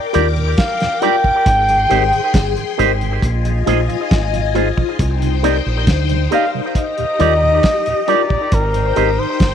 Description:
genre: lovers rock reggae.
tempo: 68 BPM.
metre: 4/4.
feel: straight.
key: unclear.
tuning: A4 = 438 Hz.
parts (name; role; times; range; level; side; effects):
mellow flugelhorn; melody; 0.0-9.5 s; Bb4 to G5; -17 LUFS; equal; tape echo.
phased string machine; second line; 0.0-9.5 s; Eb4 to D6; -22 LUFS; left 11 dB; ensemble chorus, phaser.
mellow tine electric piano; accompaniment; 0.1-9.1 s; Eb4 to D5; -24 LUFS; left 11 dB; slow stereo tremolo, tape echo.
electric guitar with an envelope filter; stabs; 0.1-9.1 s; Eb4 to Eb5; -22 LUFS; right 13 dB; tape echo.
cloth-damped thuddy drum kit; drums; 0.1-9.5 s; hi-hat, kick drum, snare drum; -17 LUFS; equal; none.
mellow tonewheel organ; accompaniment; 0.2-9.3 s; Eb2 to G4; -26 LUFS; right 11 dB; chorus vibrato, stopped rotary speaker.
deep dub fingered electric bass; bass; 0.2-9.5 s; G1 to Eb2; -18 LUFS; right 1 dB; none.
room: light reverb, small room ambience.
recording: 1960s-style stereo with parts hard left and right.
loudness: -13 LUFS.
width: side -8 dB against mid.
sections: 0.0-9.5 A section.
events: none.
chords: 0.0 Ebmaj7; 1.5 Abmaj7; 3.2 Bb7sus4; 5.0 Cm7; 6.8 Ebmaj7; 8.5 Abmaj7.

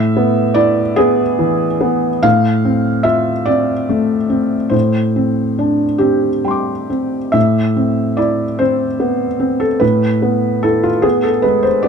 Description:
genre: neoclassical minimalist piano.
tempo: 44-50 BPM (dotted quarters).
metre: 6/8.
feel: rubato.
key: A minor.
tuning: A4 = 440 Hz.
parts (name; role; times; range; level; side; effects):
felt-muted upright piano; solo; 0.0-11.9 s; A2 to D6; -13 LUFS; equal; none.
room: light reverb.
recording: dark, warm production.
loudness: -13 LUFS.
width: side -6 dB against mid.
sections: 0.0-7.4 A section; 7.4-11.9 B section.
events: none.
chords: 0.0 E/A; 2.2 F/A; 4.7 Csus2/A; 7.4 Amadd9; 9.8 E/A.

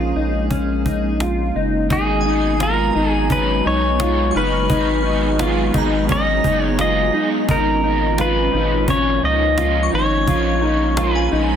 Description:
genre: dream pop.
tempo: 86 BPM.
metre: 4/4.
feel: straight.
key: G# dorian.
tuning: A4 = 439 Hz.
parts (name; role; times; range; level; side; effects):
pedal steel guitar; melody; 0.0-11.6 s; G#4 to D#5; -21 LUFS; left 1 dB; ping-pong delay.
warbly tape-like pad; sustained chords; 0.0-11.6 s; A#2 to A#5; -24 LUFS; equal; chorus, built-in reverb.
mellow electric guitar; arpeggios; 0.0-11.6 s; C#4 to E#4; -22 LUFS; left 1 dB; analog chorus, ping-pong delay.
round analog bass; bass; 0.0-11.6 s; F#1 to C#2; -22 LUFS; equal; none.
cajon; drums; 0.5-11.1 s; none; -22 LUFS; right 1 dB; none.
crunchy overdriven guitar; accompaniment; 1.9-11.6 s; G#2 to A#4; -26 LUFS; right 5 dB; harmonic tremolo, ensemble chorus.
shimmering bell with halo; texture; 2.2-11.6 s; G#5 to E#6; -31 LUFS; equal; ensemble chorus, ping-pong delay.
room: light reverb.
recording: dense, heavily limited modern master.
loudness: -15 LUFS.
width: side -8 dB against mid.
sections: 0.0-1.9 A section; 1.9-11.6 B section.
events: none.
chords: 0.0 A#m7; 1.9 G#m7; 7.5 C#6/G#.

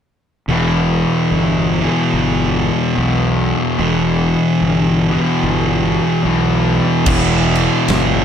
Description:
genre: stoner and doom metal.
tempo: 73 BPM.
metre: 4/4.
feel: swing 60% on 8ths.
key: E minor.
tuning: A4 = 440 Hz.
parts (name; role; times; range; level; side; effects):
fuzz guitar; riff; 0.5-8.2 s; E2 to E3; -17 LUFS; left 8 dB; distortion.
thick fuzz guitar; riff; 0.5-8.2 s; E2 to E3; -16 LUFS; right 6 dB; distortion.
fuzz fingered electric bass; bass; 0.5-8.2 s; E1 to B1; -20 LUFS; equal; overdrive.
big rock drum kit; drums; 7.1-8.1 s; crash cymbal, kick drum, ride cymbal, snare drum; -19 LUFS; right 1 dB; none.
room: light reverb.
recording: none.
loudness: -13 LUFS.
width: side -8 dB against mid.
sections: 0.5-7.1 A section; 7.1-8.2 B section.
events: none.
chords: 0.5 Em.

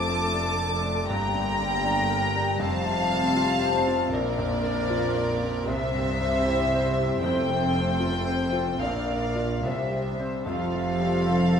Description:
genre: cinematic, emotional film score for orchestra.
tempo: 70-81 BPM.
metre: 4/4.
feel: rubato.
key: F major.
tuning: A4 = 442 Hz.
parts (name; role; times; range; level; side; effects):
warm studio violin section; melody; 0.0-11.6 s; A4 to D6; -29 LUFS; left 4 dB; none.
dark studio violin section; second line; 0.0-11.6 s; Bb4 to A5; -31 LUFS; right 1 dB; none.
bright concert grand piano; accompaniment; 0.0-11.6 s; Bb1 to D5; -31 LUFS; left 1 dB; none.
warm studio viola section; accompaniment; 0.0-11.6 s; A3 to Bb4; -33 LUFS; right 3 dB; none.
mellow French horn section; sustained chords; 0.0-11.6 s; F3 to A4; -34 LUFS; right 1 dB; none.
concert harp; arpeggios; 0.0-11.6 s; F2 to D5; -34 LUFS; left 3 dB; none.
clear studio double bass section; bass; 0.0-11.6 s; F1 to C2; -33 LUFS; right 1 dB; none.
warm studio cello section; bass; 0.0-11.6 s; F2 to F3; -31 LUFS; right 2 dB; none.
mellow hollow silver concert flute; second line; 10.5-11.6 s; F5; -33 LUFS; left 2 dB; none.
warm clarinet; second line; 10.5-11.6 s; F4; -33 LUFS; right 2 dB; none.
room: wet concert hall reverb, RT60 2.0 s.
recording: minimal, uncompressed stereo recording, vinyl crackle.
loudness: -23 LUFS.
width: side -7 dB against mid.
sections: 0.0-10.5 A section; 10.5-11.6 B section.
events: none.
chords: 0.0 Dm/F; 1.1 Gm; 2.6 Fadd9; 4.1 Bb; 5.7 C; 7.2 Fadd9; 8.8 Bb; 9.6 C; 10.5 Fadd9.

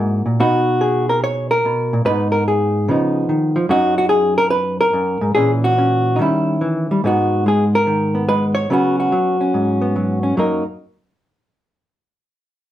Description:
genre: solo jazz.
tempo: 144 BPM.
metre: 4/4.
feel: swing 67% on 8ths, rubato.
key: F# major.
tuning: A4 = 440 Hz.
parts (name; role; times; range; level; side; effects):
hollow-body jazz guitar; solo; 0.0-10.6 s; F#2 to C#5; -15 LUFS; equal; none.
room: wet studio reverb, RT60 0.5 s.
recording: band playing live in one room.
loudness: -15 LUFS.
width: side -12 dB against mid.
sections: 0.0-7.0 A section; 7.0-10.4 B section; 10.4-12.0 C section.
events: none.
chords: 0.4 Bmaj7; 2.1 G#m; 2.9 C#9; 3.7 F#6; 5.4 A#dim; 6.2 D#7b9; 7.0 G#m7; 8.7 C#7sus4; 10.4 F#6.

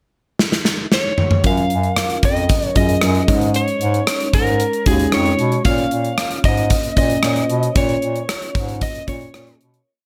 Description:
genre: 1980s-style pop.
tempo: 114 BPM.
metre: 4/4.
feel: straight.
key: unclear.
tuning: A4 = 440 Hz.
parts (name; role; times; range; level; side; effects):
gated 80s drum kit; drums; 0.4-9.9 s; hi-hat, kick drum, rim click, snare drum, toms; -21 LUFS; equal; gated reverb.
lightly driven lead guitar; melody; 0.9-9.6 s; Ab4 to F5; -24 LUFS; equal; none.
mellow FM electric piano; accompaniment; 1.4-9.9 s; Gb3 to Db5; -24 LUFS; equal; chorus.
warm bass clarinet; bass; 1.4-9.8 s; Eb2 to Cb3; -23 LUFS; equal; none.
room: light reverb, small room ambience.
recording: none.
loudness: -18 LUFS.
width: mono.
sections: 0.0-1.4 pickup bar; 1.4-9.9 verse.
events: drum fill 0.4-1.4; fade-out 7.8-9.9.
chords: 0.0 N.C.; 1.4 Gbmaj7; 3.3 Absus4; 5.7 Bbm.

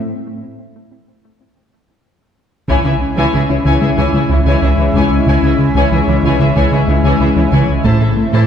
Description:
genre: cinematic, hybrid orchestral and electronic film score.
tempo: 93 BPM.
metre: 4/4.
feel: straight.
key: C# harmonic minor.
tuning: A4 = 443 Hz.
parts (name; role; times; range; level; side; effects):
chorused pulse-width pad; sustained chords; 0.0-8.5 s; G#3 to E5; -17 LUFS; left 2 dB; none.
analog pluck; arpeggios; 0.0-8.4 s; C#3 to A4; -22 LUFS; left 2 dB; none.
rich symphonic violin section; second line; 2.7-8.5 s; E4 to A5; -20 LUFS; left 6 dB; none.
clear symphonic viola section; accompaniment; 2.7-8.5 s; E3 to E4; -20 LUFS; right 1 dB; none.
smooth synth bass; riff; 2.7-8.4 s; C#2 to A3; -15 LUFS; right 1 dB; none.
rich symphonic cello section; bass; 2.7-8.4 s; A2 to C#3; -22 LUFS; right 3 dB; none.
rich symphonic double bass section; bass; 2.7-7.9 s; A1 to C#2; -21 LUFS; right 2 dB; none.
taiko ensemble; drums; 2.7-3.9, 7.8-8.5 s; none; -21 LUFS; equal; none.
room: wet scoring stage reverb, RT60 1.8 s.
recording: heard from further back in the room.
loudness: -11 LUFS.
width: side -8 dB against mid.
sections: 0.0-2.7 A section; 2.7-8.5 B section.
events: build-up 0.0-2.7; break 0.1-2.7.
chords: 0.0 Am; 2.7 C#m; 7.9 Am.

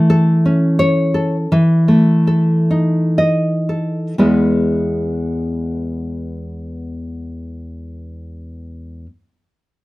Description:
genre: romantic piece for solo classical guitar.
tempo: 57-90 BPM.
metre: 3/4.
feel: rubato.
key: E major.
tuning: A4 = 441 Hz.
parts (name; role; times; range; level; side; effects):
nylon-string guitar; solo; 0.0-9.1 s; E2 to D#5; -15 LUFS; equal; none.
room: moderate small room reverb, RT60 0.6 s.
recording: rough home demo mix.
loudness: -13 LUFS.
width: side -19 dB against mid.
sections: 0.0-4.2 A section; 4.2-9.6 B section.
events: slowing down 0.0-4.2.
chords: 0.0 A/E; 1.5 Esus4; 4.2 E.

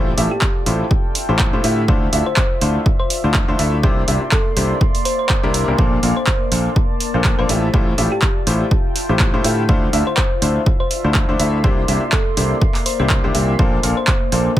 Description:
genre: piano house.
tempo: 123 BPM.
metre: 4/4.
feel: swing 56% on 16ths.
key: F major.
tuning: A4 = 441 Hz.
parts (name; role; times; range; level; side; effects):
bright upright piano; riff; 0.0-14.5 s; A2 to F5; -21 LUFS; left 1 dB; sidechain pumping, digital delay.
fingered electric bass; bass; 0.0-14.5 s; A1 to A2; -20 LUFS; equal; sidechain pumping.
warbly tape-like pad; texture; 0.0-14.6 s; Bb3 to C6; -26 LUFS; equal; chorus, built-in reverb, sidechain pumping.
punchy analog drum machine; drums; 0.2-14.4 s; handclaps, hi-hat; -21 LUFS; right 1 dB; none.
thumb-piano-like synth pluck; melody; 0.3-14.2 s; G4 to C5; -26 LUFS; left 1 dB; chorus, digital delay.
electronic kick drum; drums; 0.4-14.6 s; none; -17 LUFS; equal; none.
room: digital ambience.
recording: none.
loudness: -14 LUFS.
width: side -13 dB against mid.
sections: 0.0-14.6 A section.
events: none.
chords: 0.0 Fmaj9/A; 1.9 Dm9; 3.8 C9; 5.8 Bbmaj9; 7.5 Fmaj9/A; 9.7 Dm9; 11.6 C9; 13.6 Bbmaj9.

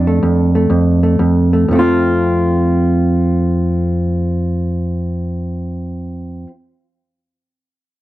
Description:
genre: solo jazz.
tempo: 116 BPM.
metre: 4/4.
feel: swing 66% on 8ths.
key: F major.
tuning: A4 = 438 Hz.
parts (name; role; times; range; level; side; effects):
hollow-body jazz guitar; solo; 0.0-6.5 s; F2 to F4; -13 LUFS; equal; none.
room: light reverb.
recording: home recording on cassette.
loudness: -13 LUFS.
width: side -16 dB against mid.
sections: 0.0-1.7 A section; 1.7-5.8 B section.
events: slowing down 0.0-1.7.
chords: 0.0 F.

